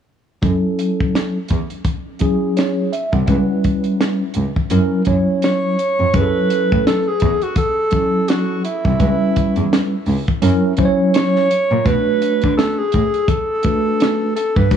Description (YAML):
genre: hip hop, jazz-hop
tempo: 84 BPM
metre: 4/4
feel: swing 59% on 16ths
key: F# minor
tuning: A4 = 439 Hz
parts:
  - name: tine electric piano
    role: accompaniment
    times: 0.4-14.8 s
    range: F#3 to F#5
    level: -18 LUFS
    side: equal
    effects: medium stereo tremolo, low-pass filter
  - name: rich cello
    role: bass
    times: 0.4-14.8 s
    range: B#1 to D3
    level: -19 LUFS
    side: right 1 dB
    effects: none
  - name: compact cocktail drum kit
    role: drums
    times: 0.4-14.8 s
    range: hi-hat, kick drum, snare drum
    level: -20 LUFS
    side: equal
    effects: none
  - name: breathy alto saxophone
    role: melody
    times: 5.4-14.8 s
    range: E4 to C#5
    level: -19 LUFS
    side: right 1 dB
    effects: analog delay
room: small room ambience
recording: cassette tape, studio ambience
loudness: -15 LUFS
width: side -8 dB against mid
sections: 0.4-6.1 A section; 6.1-14.8 B section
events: filter sweep on tine electric piano 0.4-6.1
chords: 0.4 F#m7; 3.3 C#m7b5; 4.7 F#7; 6.1 F#m7; 9.0 C#m7b5; 10.4 F#7; 11.9 Bm7